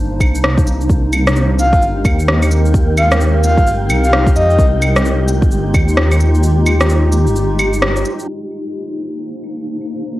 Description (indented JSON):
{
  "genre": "future garage",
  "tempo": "130 BPM",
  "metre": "4/4",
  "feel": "swing 61% on 16ths",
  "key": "C minor",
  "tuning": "A4 = 440 Hz",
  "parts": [
    { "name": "granular cloud pad", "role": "sustained chords", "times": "0.0-10.2 s", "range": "Ab3 to C5", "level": "-20 LUFS", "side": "equal", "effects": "built-in reverb, sidechain pumping" },
    { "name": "dark detuned saw bass", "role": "bass", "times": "0.0-8.0 s", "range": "G1 to F2", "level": "-14 LUFS", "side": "equal", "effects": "sidechain pumping" },
    { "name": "electronic cabasa, claves, shaker and rim click", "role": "drums", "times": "0.2-9.9 s", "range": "none", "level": "-18 LUFS", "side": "equal", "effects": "overdrive, cassette tape" },
    { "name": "electronic kick drum", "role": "drums", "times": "0.2-5.9 s", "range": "none", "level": "-14 LUFS", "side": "equal", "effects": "overdrive, cassette tape" },
    { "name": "wind-like tuned noise texture", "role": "texture", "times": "1.8-8.3 s", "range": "G4 to G5", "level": "-26 LUFS", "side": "left 4 dB", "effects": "built-in reverb" },
    { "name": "breathy flute-like synth lead", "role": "melody", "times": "1.6-4.6 s", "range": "Eb5 to F5", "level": "-18 LUFS", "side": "equal", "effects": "chorus, cassette tape, tape echo" }
  ],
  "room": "light reverb, digital ambience",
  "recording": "home recording on cassette, low-pass filter",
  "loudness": "-11 LUFS",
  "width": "side -16 dB against mid",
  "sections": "0.0-8.3 A section; 8.3-10.2 B section",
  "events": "kick drops out 6.4-8.3; band accent 7.8; filter sweep 8.3-10.2",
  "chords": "0.0 Cm9; 0.9 Bb9sus4; 4.6 Fm9; 8.3 Cm9",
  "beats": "0.43 | 0.90 1.36 1.82 2.28 | 2.74 3.20 3.67 4.13 | 4.59 5.05 5.51 5.97 | 6.43 6.90 7.36 7.82 | 8.28 8.74 9.20 9.67 | 10.13"
}